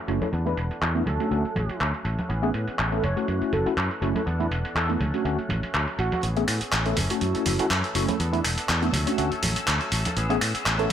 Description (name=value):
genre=filtered disco house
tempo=122 BPM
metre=4/4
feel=swing 55% on 16ths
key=A major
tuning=A4 = 440 Hz
part: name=warm symphonic string section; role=sustained chords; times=0.0-10.9 s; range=E6 to F#6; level=-39 LUFS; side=left 5 dB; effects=low-pass filter
part: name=direct-recorded clean electric guitar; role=riff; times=0.0-10.9 s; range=E3 to A4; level=-35 LUFS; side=equal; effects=analog chorus, low-pass filter
part: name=tine electric piano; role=accompaniment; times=0.1-10.9 s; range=A3 to A4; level=-27 LUFS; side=equal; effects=medium stereo tremolo, phaser, low-pass filter
part: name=fingered electric bass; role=bass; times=0.1-10.9 s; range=E1 to A2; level=-27 LUFS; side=equal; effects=low-pass filter
part: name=dusty soul sampler-style drum kit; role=drums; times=0.1-10.9 s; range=finger snaps, handclaps, hi-hat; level=-28 LUFS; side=equal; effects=low-pass filter on hats, low-pass filter on snare, low-pass filter on room
part: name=tambourine and congas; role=percussion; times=0.2-10.9 s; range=none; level=-33 LUFS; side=right 1 dB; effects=low-pass filter on perc
part: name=analog synth brass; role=melody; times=0.5-6.2 s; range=F#4 to C#5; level=-32 LUFS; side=right 1 dB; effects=chorus, cassette tape, low-pass filter, analog delay
room=light reverb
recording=dry, gritty hardware recording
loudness=-22 LUFS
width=side -9 dB against mid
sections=0.0-6.2 A section; 6.2-10.9 B section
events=filter sweep 0.0-6.2, 6.2-10.9; build-up 6.2-10.9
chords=0.3 E7sus4; 1.1 Dmaj7; 2.3 Amaj9; 3.0 F#m7; 4.3 E7sus4; 5.0 Dmaj7; 6.2 Amaj9; 7.0 F#m7; 8.2 E7sus4; 8.9 Dmaj7; 10.2 Amaj9